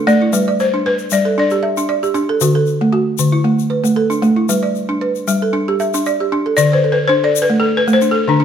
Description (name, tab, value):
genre	west african traditional, West African string and xylophone music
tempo	115 BPM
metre	4/4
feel	swing 54% on 16ths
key	D mixolydian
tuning	A4 = 442 Hz
part	balafon	melody	0.0-2.1, 6.6-8.4 s	D4 to D5	-15 LUFS	left 4 dB	none
part	balafon	arpeggios	0.0-8.4 s	D3 to E5	-14 LUFS	right 1 dB	none
part	tube shaker	percussion	0.1-8.1 s	none	-25 LUFS	left 11 dB	none
room	light reverb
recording	none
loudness	-13 LUFS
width	side -8 dB against mid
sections	0.0-6.6 A section; 6.6-8.4 B section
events	balafon solo 6.6-8.4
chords	0.3 G; 2.4 D; 4.5 G; 6.6 D5